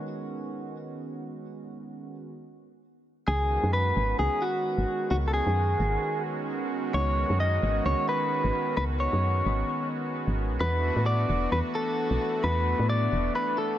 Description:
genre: IDM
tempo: 131 BPM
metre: 4/4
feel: swing 56% on 16ths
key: C# minor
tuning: A4 = 439 Hz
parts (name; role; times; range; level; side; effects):
- warm analog pad; sustained chords; 0.0-13.8 s; D#3 to F#4; -32 LUFS; right 1 dB; chorus
- electric guitar at the edge of break-up; melody; 3.3-13.8 s; F#4 to D#5; -28 LUFS; left 1 dB; ping-pong delay
- woody FM bass; bass; 3.3-13.3 s; E1 to A2; -26 LUFS; equal; none
room: light reverb, digital ambience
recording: none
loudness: -24 LUFS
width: side -12 dB against mid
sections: 0.0-3.3 A section; 3.3-13.8 B section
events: break 2.4-3.3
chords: 0.0 C#9sus4; 10.6 E9sus4

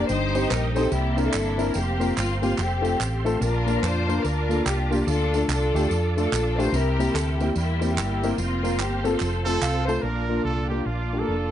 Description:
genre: uptempo gospel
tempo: 145 BPM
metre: 4/4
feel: swing 62% on 8ths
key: Bb major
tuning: A4 = 440 Hz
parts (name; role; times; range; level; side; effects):
- warm studio string section; melody; 0.0-11.5 s; G3 to C5; -27 LUFS; left 2 dB; none
- dark baby grand piano; accompaniment; 0.0-11.3 s; G2 to A5; -26 LUFS; left 2 dB; none
- bright tonewheel organ; sustained chords; 0.0-11.5 s; Bb3 to Eb6; -35 LUFS; right 6 dB; fast rotary speaker, chorus vibrato
- hollow-body short-scale fingered electric bass; bass; 0.0-11.5 s; F1 to F2; -26 LUFS; right 1 dB; none
- tambourine and handclaps; percussion; 0.1-10.0 s; none; -34 LUFS; right 8 dB; none
- brilliant trumpet; melody; 9.5-11.5 s; F4 to C5; -31 LUFS; right 6 dB; none
room: light reverb, small room ambience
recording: nothing above 10.4 kHz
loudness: -21 LUFS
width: side -11 dB against mid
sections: 0.0-10.0 A section; 10.0-11.5 B section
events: grand piano fill 9.4-10.0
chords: 0.1 Cm/G; 0.9 C9; 1.8 Fsus4; 2.6 F; 3.4 Bb; 6.7 C7; 8.4 Fsus4; 9.2 F; 10.0 Bb

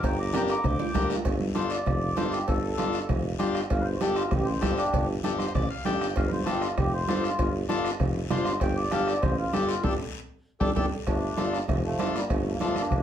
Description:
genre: latin, cumbia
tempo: 196 BPM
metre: 4/4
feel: straight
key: unclear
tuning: A4 = 440 Hz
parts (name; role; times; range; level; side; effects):
- mellow accordion; melody; 0.0-13.0 s; F3 to G6; -31 LUFS; equal; none
- mellow tuba; bass; 0.0-13.0 s; F1 to D2; -30 LUFS; right 1 dB; none
- bombo; percussion; 0.0-13.0 s; none; -31 LUFS; equal; none
- congas; percussion; 0.0-13.0 s; none; -33 LUFS; right 2 dB; none
- cowbell and timbales; percussion; 0.0-13.0 s; none; -37 LUFS; right 5 dB; none
- guiro; percussion; 0.0-13.0 s; none; -44 LUFS; left 6 dB; none
- combo organ; accompaniment; 0.3-12.8 s; D4 to G5; -30 LUFS; left 3 dB; none
room: wet studio ambience, RT60 0.5 s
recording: heard from further back in the room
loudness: -24 LUFS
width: side -10 dB against mid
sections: 0.0-1.3 A section; 1.3-11.1 B section; 11.1-13.0 C section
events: drum fill 0.3-1.3, 9.8-11.1; accordion solo 1.3-11.1; transistor combo organ fill 5.2-6.2; band accent 9.8-11.1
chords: 0.0 Gm; 1.3 Dm; 3.7 Gsus2; 6.2 Dm; 8.6 Gsus2; 11.1 Dm

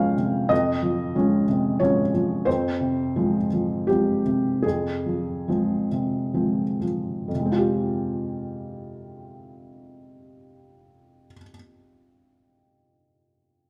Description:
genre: neoclassical minimalist piano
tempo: 63-92 BPM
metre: 3/4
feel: rubato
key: F minor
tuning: A4 = 440 Hz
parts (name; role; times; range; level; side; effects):
- felt-muted upright piano; solo; 0.0-13.7 s; F2 to G5; -24 LUFS; equal; none
room: wet large studio reverb, RT60 1.1 s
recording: band playing live in one room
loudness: -24 LUFS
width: mono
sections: 0.0-7.3 A section; 7.3-12.9 B section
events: slowing down 1.5-7.3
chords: 0.0 Dbmaj7/F; 2.5 Fmadd9

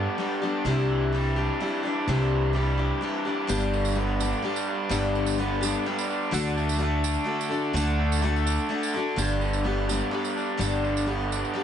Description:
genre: folk rock and heartland rock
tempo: 127 BPM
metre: 3/4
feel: straight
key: G major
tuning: A4 = 441 Hz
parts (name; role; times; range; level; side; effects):
- picked steel-string acoustic guitar; accompaniment; 0.0-11.6 s; G2 to A4; -28 LUFS; left 5 dB; none
- raw garage guitar; riff; 0.0-11.6 s; G2 to D4; -28 LUFS; right 2 dB; overdrive
- upright bass; bass; 0.0-11.4 s; G1 to D2; -27 LUFS; right 1 dB; none
- tambourine; percussion; 3.5-11.5 s; none; -37 LUFS; right 18 dB; none
room: light reverb, small room ambience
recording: nothing above 10.3 kHz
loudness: -24 LUFS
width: side -9 dB against mid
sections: 0.0-9.2 A section; 9.2-11.6 B section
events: none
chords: 0.0 G; 0.7 Cadd9; 3.5 G; 6.3 D; 9.2 G

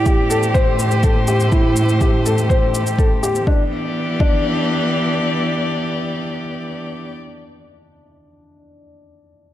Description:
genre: piano and strings electronica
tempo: 123 BPM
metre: 4/4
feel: straight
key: E minor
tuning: A4 = 439 Hz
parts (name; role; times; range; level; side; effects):
- warm string quartet; sustained chords; 0.0-7.2 s; A2 to D5; -19 LUFS; equal; sidechain pumping
- warm upright piano; riff; 0.0-9.5 s; D4 to C5; -21 LUFS; left 1 dB; digital delay
- electronic kick drum; drums; 0.1-4.3 s; none; -16 LUFS; equal; none
- shaker; drums; 0.1-3.5 s; none; -29 LUFS; left 1 dB; none
room: light reverb, small room ambience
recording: none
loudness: -15 LUFS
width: side -13 dB against mid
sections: 0.0-3.5 A section; 3.5-7.4 B section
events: none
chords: 0.0 Am7; 3.5 Em7

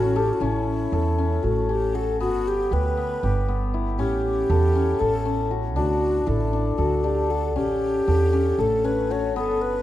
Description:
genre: contemporary instrumental, contemporary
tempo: 234 BPM (eighths)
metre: 7/8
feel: straight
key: A mixolydian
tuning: A4 = 440 Hz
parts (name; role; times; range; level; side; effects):
- breathy mellow jazz flute; melody; 0.0-9.8 s; E4 to C#5; -25 LUFS; equal; none
- hammered dulcimer; arpeggios; 0.0-9.8 s; B3 to A4; -25 LUFS; left 4 dB; none
- upright bass; bass; 0.0-9.8 s; G1 to E2; -25 LUFS; right 2 dB; none
room: moderate scoring stage reverb, RT60 2.0 s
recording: dark, warm production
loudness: -20 LUFS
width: side -13 dB against mid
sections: 0.4-9.8 A section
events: none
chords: 0.4 A; 2.2 G; 4.0 A7; 5.8 Dadd9; 7.6 A7

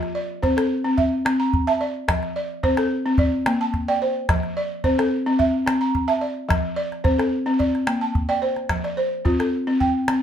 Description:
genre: west african traditional, West African string and xylophone music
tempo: 109 BPM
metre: 4/4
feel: straight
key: F major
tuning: A4 = 441 Hz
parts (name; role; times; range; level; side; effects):
- balafon; arpeggios; 0.0-10.2 s; F3 to Bb5; -20 LUFS; equal; none
- calabash; percussion; 0.0-10.2 s; none; -23 LUFS; equal; none
room: wet studio reverb, RT60 0.5 s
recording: heard from further back in the room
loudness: -19 LUFS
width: side -9 dB against mid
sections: 0.0-8.7 A section; 8.7-10.2 B section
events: none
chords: 0.0 F; 1.0 C; 2.1 F; 3.2 Bb; 4.3 F; 5.4 C; 6.5 F; 7.6 Bb; 8.7 F

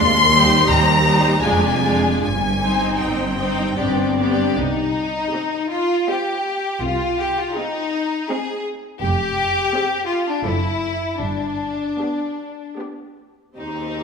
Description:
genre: classical, slow romantic movement for string orchestra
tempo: 74-85 BPM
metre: 3/4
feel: rubato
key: C minor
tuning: A4 = 439 Hz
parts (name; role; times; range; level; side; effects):
- rich studio violin section; melody; 0.0-14.0 s; C5 to C6; -18 LUFS; left 3 dB; none
- rich studio cello section; bass; 0.0-14.0 s; Eb2 to C3; -26 LUFS; right 2 dB; none
- rich studio double bass section; bass; 0.0-14.0 s; F1 to Eb2; -24 LUFS; right 2 dB; none
- clear studio violin section; second line; 0.3-14.0 s; C4 to D5; -22 LUFS; left 2 dB; none
- rich studio viola section; accompaniment; 0.3-14.0 s; G3 to A4; -24 LUFS; right 2 dB; none
room: wet scoring stage reverb, RT60 1.6 s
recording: minimal, uncompressed stereo recording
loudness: -17 LUFS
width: side -5 dB against mid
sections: 0.0-4.6 A section; 4.6-14.0 B section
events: none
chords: 0.0 Cm/Eb; 1.4 Ddim/F; 2.2 Cm/G; 3.8 G; 4.6 Cm; 6.8 Ab/C; 9.0 Dm7b5/F; 10.4 D7/F#; 11.2 G

